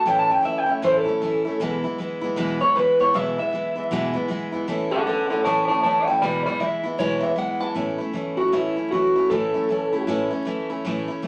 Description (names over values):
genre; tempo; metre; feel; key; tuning
rock; 156 BPM; 4/4; swing 61% on 8ths; A major; A4 = 441 Hz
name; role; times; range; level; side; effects
electric guitar through a small old amp; melody; 0.0-10.0 s; E4 to B5; -23 LUFS; equal; none
picked steel-string acoustic guitar; accompaniment; 0.0-11.3 s; E2 to E4; -28 LUFS; equal; none
room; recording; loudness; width
moderate club reverb, RT60 0.6 s; vinyl crackle, nothing above 10.5 kHz; -23 LUFS; mono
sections
0.0-7.8 A section; 7.8-11.3 B section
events
clean electric guitar solo 0.0-7.8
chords
0.1 A; 1.6 E; 4.7 A; 6.2 E; 7.8 A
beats
| 0.07 0.45 0.84 1.22 | 1.61 1.99 2.38 2.76 | 3.15 3.53 3.92 4.30 | 4.68 5.07 5.45 5.84 | 6.22 6.61 6.99 7.38 | 7.76 8.15 8.53 8.92 | 9.30 9.69 10.07 10.46 | 10.84 11.23